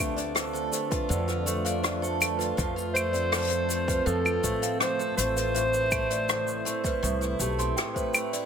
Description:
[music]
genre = folktronica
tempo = 81 BPM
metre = 4/4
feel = straight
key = unclear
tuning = A4 = 440 Hz
[part]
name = celesta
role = second line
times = 0.0-8.5 s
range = G4 to C6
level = -33 LUFS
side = equal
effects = digital delay
[part]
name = warbly tape-like pad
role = sustained chords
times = 0.0-8.5 s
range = D3 to D5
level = -37 LUFS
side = right 2 dB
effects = chorus, built-in reverb
[part]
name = picked steel-string acoustic guitar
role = arpeggios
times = 0.0-8.5 s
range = A2 to B4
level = -32 LUFS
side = right 2 dB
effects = ping-pong delay
[part]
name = upright bass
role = bass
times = 0.0-7.7 s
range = A1 to A2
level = -32 LUFS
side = left 1 dB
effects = none
[part]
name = jazz brush drum kit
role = drums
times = 0.0-8.5 s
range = claves, hi-hat, rim click, shaker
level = -29 LUFS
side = left 2 dB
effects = none
[part]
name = electronic kick drum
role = drums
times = 0.9-8.1 s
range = none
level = -33 LUFS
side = equal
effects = none
[part]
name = mellow clarinet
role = melody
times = 2.9-7.7 s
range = A4 to C5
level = -29 LUFS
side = right 1 dB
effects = ping-pong delay
[sound]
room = light reverb, studio ambience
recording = none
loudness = -25 LUFS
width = side -7 dB against mid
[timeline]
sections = 0.0-8.5 A section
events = none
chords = 0.0 Dm; 2.6 F; 5.5 Amadd9

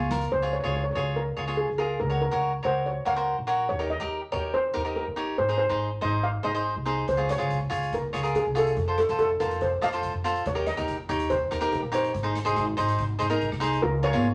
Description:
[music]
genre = calypso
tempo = 142 BPM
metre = 4/4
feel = straight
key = Db major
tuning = A4 = 443 Hz
[part]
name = cavaquinho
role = accompaniment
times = 0.0-14.3 s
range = Eb4 to Eb5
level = -30 LUFS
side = equal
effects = none
[part]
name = upright bass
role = bass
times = 0.0-14.3 s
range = Ab1 to F2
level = -34 LUFS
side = equal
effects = none
[part]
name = street-band drum kit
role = drums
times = 0.1-0.3, 7.1-13.8 s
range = hi-hat, kick drum, rim click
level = -42 LUFS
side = equal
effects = none
[part]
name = congas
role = percussion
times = 0.1-0.2, 14.1-14.2 s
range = none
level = -30 LUFS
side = equal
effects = none
[part]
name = steel pan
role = melody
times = 0.3-14.3 s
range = F4 to F5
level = -30 LUFS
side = equal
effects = none
[sound]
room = wet studio reverb, RT60 0.5 s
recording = none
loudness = -27 LUFS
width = mono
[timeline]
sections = 0.3-13.8 A section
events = cavaquinho fill 0.0-0.3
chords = 0.3 Db; 2.0 Gb/Db; 3.7 Eb7; 5.4 Ab; 7.1 Db; 8.8 F; 10.5 Eb; 12.1 Ab; 13.8 Db6

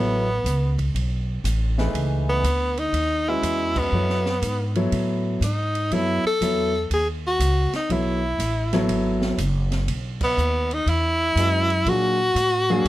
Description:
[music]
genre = modal jazz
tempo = 121 BPM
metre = 4/4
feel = swing 66% on 8ths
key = F# dorian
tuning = A4 = 440 Hz
[part]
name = bright tenor saxophone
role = melody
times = 0.0-12.9 s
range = B3 to A4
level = -22 LUFS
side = equal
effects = none
[part]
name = warm concert grand piano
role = accompaniment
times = 0.0-12.9 s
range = E3 to E#5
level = -24 LUFS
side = equal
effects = none
[part]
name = upright bass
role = bass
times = 0.0-12.9 s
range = F#1 to A#2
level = -24 LUFS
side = equal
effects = none
[part]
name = open jazz drum kit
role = drums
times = 0.5-12.9 s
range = crash cymbal, hi-hat, kick drum, ride cymbal, snare drum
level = -34 LUFS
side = right 2 dB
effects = none
[sound]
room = light reverb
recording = close, detailed microphones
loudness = -20 LUFS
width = side -15 dB against mid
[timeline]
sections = 0.0-12.9 A section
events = band accent 3.7, 10.1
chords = 0.0 F#m11; 5.9 Bsus4; 11.9 A#7b13

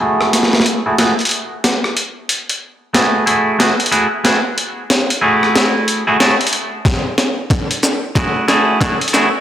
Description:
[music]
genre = glitch hop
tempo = 92 BPM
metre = 4/4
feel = swing 62% on 16ths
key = F# minor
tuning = A4 = 438 Hz
[part]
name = clean electric guitar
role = stabs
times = 0.0-9.3 s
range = A3 to G#4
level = -15 LUFS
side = right 1 dB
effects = sidechain pumping, low-pass filter, tape echo
[part]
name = boom bap sampler-style drum kit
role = drums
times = 0.2-9.3 s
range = hi-hat, rim click, shaker, snare drum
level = -16 LUFS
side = equal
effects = high-pass filter on hats, high-pass filter on snare, high-pass filter on perc, high-pass filter on room
[part]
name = electronic kick drum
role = drums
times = 6.8-9.0 s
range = none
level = -17 LUFS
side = equal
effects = none
[sound]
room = moderate lush hall reverb, RT60 2.1 s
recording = dry, gritty hardware recording, high-pass filter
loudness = -13 LUFS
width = side -10 dB against mid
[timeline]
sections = 0.0-9.4 A section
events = build-up 0.0-9.4; drum fill 0.0-9.4; filter sweep on clean electric guitar 0.0-9.4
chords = 0.0 F#m9

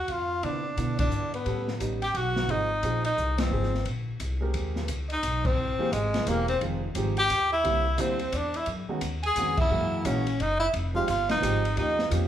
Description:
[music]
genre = jazz, small-group swing and bop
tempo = 175 BPM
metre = 3/4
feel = swing 63% on 8ths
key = unclear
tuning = A4 = 439 Hz
[part]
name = bright tenor saxophone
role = melody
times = 0.0-12.1 s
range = Ab3 to G#4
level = -28 LUFS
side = left 1 dB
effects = none
[part]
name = clear alto saxophone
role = second line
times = 0.0-12.1 s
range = Ab4 to G#5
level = -34 LUFS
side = right 2 dB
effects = none
[part]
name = upright bass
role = bass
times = 0.0-12.3 s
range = E1 to C3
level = -30 LUFS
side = equal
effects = none
[part]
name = open jazz drum kit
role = drums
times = 0.1-12.2 s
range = crash cymbal, hi-hat, kick drum, ride cymbal, snare drum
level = -34 LUFS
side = left 1 dB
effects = none
[part]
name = warm baby grand piano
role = accompaniment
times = 0.4-12.3 s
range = D3 to Bb4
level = -32 LUFS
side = right 3 dB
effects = none
[sound]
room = moderate large studio reverb, RT60 0.9 s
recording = band playing live in one room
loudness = -24 LUFS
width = side -10 dB against mid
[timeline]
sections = 0.0-4.5 A section; 4.5-12.3 B section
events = band accent 0.9, 3.3, 5.4, 9.5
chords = 0.4 Cmaj9; 1.5 A9; 2.5 Ab6; 4.5 Abmaj9; 5.6 C7b13; 6.6 Fm7; 7.6 C9; 8.7 B69; 9.7 Gb13; 10.7 Fm9; 11.8 Eb9

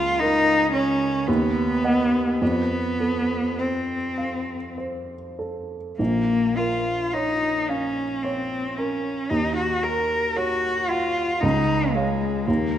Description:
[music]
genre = classical, romantic duo for cello and grand piano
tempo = 49-58 BPM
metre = 3/4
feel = rubato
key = Bb minor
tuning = A4 = 440 Hz
[part]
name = warm cello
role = melody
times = 0.0-12.8 s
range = Ab3 to Bb4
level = -22 LUFS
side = left 1 dB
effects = none
[part]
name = warm baby grand piano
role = accompaniment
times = 0.0-12.8 s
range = Bb1 to F#5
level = -26 LUFS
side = right 2 dB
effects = none
[sound]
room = wet scoring stage reverb, RT60 2.0 s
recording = none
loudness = -21 LUFS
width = side -10 dB against mid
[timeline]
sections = 0.0-12.8 A section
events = none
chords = 0.0 Bbm/Db; 1.3 B/D#; 2.4 F; 6.0 Bbm; 9.3 Ebm7; 11.4 Dbadd9

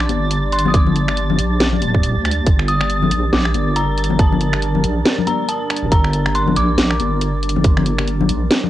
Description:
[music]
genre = deep dubstep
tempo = 139 BPM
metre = 4/4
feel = swing 58% on 16ths, half-time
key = G minor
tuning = A4 = 440 Hz
[part]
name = dark detuned synth bell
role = melody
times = 0.0-8.7 s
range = A5 to Eb6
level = -24 LUFS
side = left 1 dB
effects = chorus, cassette tape, dub echo
[part]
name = deep dark ambient pad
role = sustained chords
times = 0.0-8.7 s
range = G3 to D5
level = -25 LUFS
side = right 2 dB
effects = chorus, built-in reverb, cassette tape
[part]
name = deep soft wobble bass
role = bass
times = 0.0-8.5 s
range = D1 to D2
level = -18 LUFS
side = right 1 dB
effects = chorus
[part]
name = garage drum kit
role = drums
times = 0.0-8.6 s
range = finger snaps, hi-hat, snare drum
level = -20 LUFS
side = equal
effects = cassette tape
[part]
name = flickering grainy texture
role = texture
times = 0.0-8.7 s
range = A6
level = -29 LUFS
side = right 4 dB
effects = built-in reverb, cassette tape
[part]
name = congas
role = percussion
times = 0.1-8.7 s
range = none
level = -23 LUFS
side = left 8 dB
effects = none
[part]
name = electronic kick drum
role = drums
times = 0.7-7.7 s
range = none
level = -14 LUFS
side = right 1 dB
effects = cassette tape
[sound]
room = light reverb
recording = home recording on cassette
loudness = -14 LUFS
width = side -14 dB against mid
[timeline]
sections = 0.0-8.7 A section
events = none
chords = 0.0 G5

